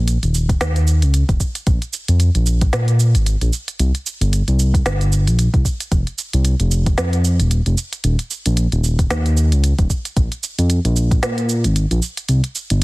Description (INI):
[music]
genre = organic downtempo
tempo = 113 BPM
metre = 4/4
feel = swing 57% on 16ths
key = unclear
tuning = A4 = 440 Hz
[part]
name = smooth synth bass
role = bass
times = 0.0-12.8 s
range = Eb1 to Bb2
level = -15 LUFS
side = equal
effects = sidechain pumping
[part]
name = organic electronic drum kit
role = drums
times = 0.1-12.8 s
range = cabasa, hi-hat, snare drum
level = -24 LUFS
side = right 2 dB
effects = none
[part]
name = electronic kick drum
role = drums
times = 0.5-11.2 s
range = none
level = -16 LUFS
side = equal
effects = none
[sound]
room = digital ambience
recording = dense, heavily limited modern master, faint mains hum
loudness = -15 LUFS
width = side -22 dB against mid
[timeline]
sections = 0.0-12.8 A section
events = none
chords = none